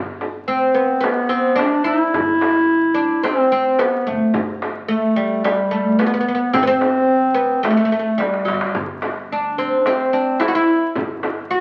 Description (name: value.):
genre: Turkish makam ensemble.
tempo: 109 BPM.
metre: 4/4.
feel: straight.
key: G makam rast.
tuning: A4 = 440 Hz.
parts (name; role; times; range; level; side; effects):
upright bass; bass; 0.0-11.6 s; G1; -41 LUFS; equal; none.
frame drum; percussion; 0.2-11.4 s; none; -29 LUFS; equal; none.
oud; melody; 0.5-11.6 s; F#3 to F#4; -21 LUFS; equal; none.
clear clarinet; second line; 0.5-11.6 s; G3 to F#4; -21 LUFS; equal; none.
darbuka; percussion; 1.0-11.4 s; none; -31 LUFS; equal; none.
room: wet large studio reverb, RT60 1.2 s.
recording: very old 78 rpm record, vinyl crackle.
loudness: -18 LUFS.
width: mono.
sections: 0.0-11.6 A section.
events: drum fill 8.2-8.8.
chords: none.